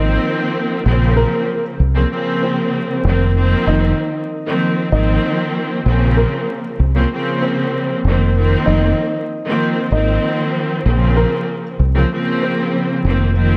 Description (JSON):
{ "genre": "hip hop", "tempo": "96 BPM", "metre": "4/4", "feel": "swing 54% on 16ths", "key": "Bb minor", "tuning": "A4 = 440 Hz", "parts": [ { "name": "dark upright piano", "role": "melody", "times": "0.0-13.3 s", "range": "Bb3 to Eb5", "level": "-25 LUFS", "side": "equal", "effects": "high-pass filter, low-pass filter" }, { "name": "dark studio string section", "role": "accompaniment", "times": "0.0-13.6 s", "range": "Db3 to C4", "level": "-20 LUFS", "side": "equal", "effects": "cassette tape, high-pass filter, low-pass filter" }, { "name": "deep dub fingered electric bass", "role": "bass", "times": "0.0-13.5 s", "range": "F1 to C2", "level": "-17 LUFS", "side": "equal", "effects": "none" } ], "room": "small room ambience", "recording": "vinyl crackle", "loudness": "-17 LUFS", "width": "mono", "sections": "0.0-13.6 A section", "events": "none", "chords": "0.0 F7sus4; 0.9 Bbmadd9; 3.0 F7sus4; 5.9 Bbmadd9; 8.0 F7sus4; 10.9 Bbmadd9; 13.0 F7sus4" }